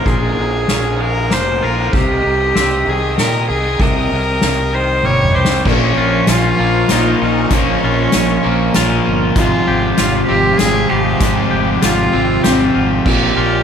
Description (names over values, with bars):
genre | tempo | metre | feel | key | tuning
post-rock | 97 BPM | 3/4 | straight | Bb dorian | A4 = 440 Hz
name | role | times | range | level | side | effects
rich cello | melody | 0.0-13.6 s | C4 to Db5 | -17 LUFS | equal | diffuse ambient delay
dark symphonic string section | sustained chords | 0.0-13.6 s | F4 to Eb6 | -28 LUFS | right 1 dB | none
twangy electric guitar | arpeggios | 0.0-13.6 s | Bb2 to G4 | -21 LUFS | left 2 dB | wide subtle chorus, diffuse ambient delay
fuzz fingered electric bass | bass | 0.0-13.6 s | F1 to Bb2 | -20 LUFS | equal | overdrive
soft-mallet drum kit | drums | 0.1-13.2 s | crash cymbal, hi-hat, kick drum, ride cymbal, snare drum, toms | -19 LUFS | equal | none
crunchy overdriven guitar | riff | 5.7-13.6 s | F2 to Bb3 | -19 LUFS | left 9 dB | lush chorus
overdriven semi-hollow guitar | riff | 5.7-13.6 s | F2 to Bb3 | -20 LUFS | right 10 dB | wide subtle chorus
room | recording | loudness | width
moderate church reverb, RT60 2.8 s | dreamy mix soaked in reverb | -12 LUFS | side -7 dB against mid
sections
0.0-5.7 A section; 5.7-13.6 B section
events
build-up 0.0-5.7; drum fill 5.0-5.7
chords
0.0 Bbm; 1.9 Cm; 5.7 Bbm; 9.4 Fmadd9/Ab; 13.1 Bbm